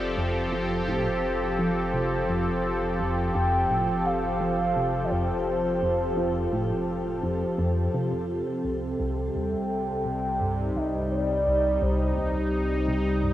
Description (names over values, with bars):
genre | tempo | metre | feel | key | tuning
ambient, sequencer-driven space music | 85 BPM | 4/4 | straight | C dorian from 8.3 s | A4 = 440 Hz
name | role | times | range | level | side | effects
expressive portamento lead | melody | 0.0-12.9 s | C5 to G5 | -30 LUFS | equal | wide subtle chorus, cassette tape, shimmer reverb, tape echo
sweeping resonant pad | sustained chords | 0.0-13.3 s | C3 to A4 | -27 LUFS | equal | chorus, cassette tape, shimmer reverb
round analog bass | bass | 0.0-13.3 s | F1 to C2 | -34 LUFS | equal | none
tight sequenced synth | riff | 0.2-13.3 s | C2 to F3 | -30 LUFS | equal | chorus, cassette tape, tape echo
room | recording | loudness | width
wet lush hall reverb, RT60 2.5 s | home recording on cassette | -24 LUFS | side -13 dB against mid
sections
0.0-8.3 A section; 8.3-13.3 B section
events
filter sweep on synth arpeggio sound 0.0-8.3, 8.3-13.3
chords
0.0 F; 8.3 Cm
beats
0.53 1.23 1.94 | 2.64 3.35 4.05 4.76 | 5.47 6.17 6.88 7.58 | 8.29 8.99 9.70 10.41 | 11.11 11.82 12.53 13.23